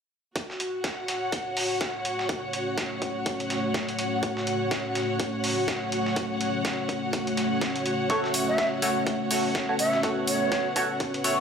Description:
bass house; 124 BPM; 4/4; swing 58% on 16ths; F# minor; A4 = 440 Hz
deep dark ambient pad; sustained chords; 1.7-11.4 s; A3 to C#5; -30 LUFS; left 1 dB; chorus, built-in reverb, sidechain pumping
dusty soul sampler-style drum kit; drums; 0.4-11.4 s; hi-hat, snare drum; -33 LUFS; right 1 dB; sidechain pumping on hats, high-pass filter on hats, high-pass filter on snare, high-pass filter on room
electronic kick drum; drums; 0.4-11.1 s; -30 LUFS; equal; high-pass filter on kick
dark studio string section; texture; 0.4-11.4 s; F#4 to F#5; -30 LUFS; equal; sidechain pumping
band-passed chord stab; stabs; 8.1-11.4 s; A3 to C#5; -28 LUFS; equal; phaser, lush chorus, sidechain pumping, tape echo
electronic hi-hat; drums; 8.3-11.4 s; -30 LUFS; right 1 dB
mellow silver concert flute; melody; 8.5-10.7 s; C#5 to E5; -29 LUFS; right 2 dB; tape echo
moderate plate reverb, RT60 1.1 s, digital ambience; played on a big sound system in a bare room, large studio reverb; -25 LUFS; side -6 dB against mid
0.4-11.4 A section
0.4 F#m

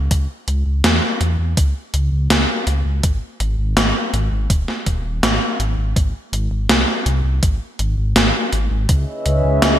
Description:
synthwave; 82 BPM; 4/4; straight; C# minor; A4 = 440 Hz
dark detuned saw bass; bass; 0.0-9.8 s; D#1 to E2; -18 LUFS; equal; sidechain pumping
electronic kick drum; drums; 0.1-9.0 s; -17 LUFS; equal
gated 80s digital drum machine; drums; 0.1-9.8 s; hi-hat, snare drum; -18 LUFS; equal; gated reverb, gated reverb snare
chorused pulse-width pad; sustained chords; 8.9-9.8 s; C#4 to E5; -18 LUFS; equal; sidechain pumping
light reverb; bright 1980s-style digital production; -16 LUFS; side -11 dB against mid
0.0-9.8 A section
0.0 C#m; 3.0 G#; 8.9 C#m7

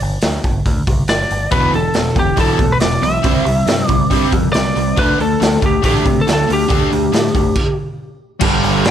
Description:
hard rock; 139 BPM; 4/4; straight; A4 = 442 Hz
growling picked electric bass; bass; 0.0-8.9 s; E1 to C3; -21 LUFS; equal; overdrive
raw garage drum kit; drums; 0.0-8.9 s; crash cymbal, hi-hat, kick drum, snare drum; -17 LUFS; equal
lightly driven lead guitar; melody; 1.1-7.8 s; G4 to E5; -18 LUFS; equal; slapback echo
crunchy overdriven guitar; riff; 1.5-8.9 s; E2 to D4; -20 LUFS; right 11 dB
distorted electric guitar; riff; 1.5-8.9 s; E2 to D4; -21 LUFS; left 12 dB; overdrive
distorted electric guitar; riff; 8.4-8.9 s; G2 to G3; -19 LUFS; right 1 dB; distortion
small room ambience; -13 LUFS; side -10 dB against mid
0.0-8.4 A section
stop 7.6-8.4
0.0 G5; 1.5 E5; 3.3 C; 5.0 Dsus4

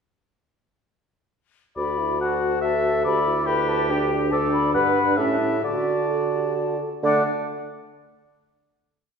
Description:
quick classical-period movement for wind quintet; 127-142 BPM; 3/4; rubato; D major; A4 = 440 Hz
mellow concert flute; melody; 1.8-7.3 s; F#5 to B5; -27 LUFS; left 6 dB
warm oboe; second line; 1.8-7.2 s; G4 to F#5; -27 LUFS; left 3 dB
warm French horn; accompaniment; 1.8-7.2 s; A3 to A4; -28 LUFS; left 2 dB
warm bassoon; bass; 1.8-7.2 s; D2 to D3; -25 LUFS; right 2 dB
warm clarinet; accompaniment; 2.2-7.2 s; D4 to B4; -28 LUFS; right 6 dB
wet scoring stage reverb, RT60 1.5 s; heard from further back in the room; -20 LUFS; side -6 dB against mid
1.8-7.0 theme; 7.0-8.4 final chord
slowing down 3.7-7.0
1.8 D; 3.1 G/D; 4.3 D5; 4.8 G; 5.2 A; 5.6 D; 7.0 D5

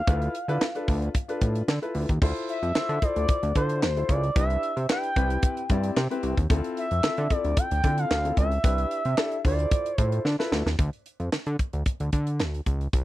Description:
early-eighties boogie funk; 112 BPM; 4/4; straight; D dorian; A4 = 440 Hz
expressive synth lead; melody; 0.0-10.2 s; C5 to G5; -29 LUFS; equal; chorus, tape echo
warm grand piano; accompaniment; 0.1-10.6 s; C4 to D5; -32 LUFS; left 3 dB
fat analog bass; bass; 0.1-13.0 s; C2 to D3; -26 LUFS; equal
tight funk drum kit; drums; 0.1-13.0 s; crash cymbal, handclaps, hi-hat, kick drum, snare drum; -25 LUFS; equal
little or no reverb; dry, close 1970s-style studio recording; -23 LUFS; side -16 dB against mid
0.0-2.2 A section; 2.2-10.8 B section; 10.8-13.0 C section
drum fill 10.3-10.8
0.0 Dm69; 2.2 Dm7; 4.4 Cmaj7; 5.2 Cmaj9; 6.5 Dm7; 8.6 Cmaj7; 9.4 Dm9; 10.8 N.C.

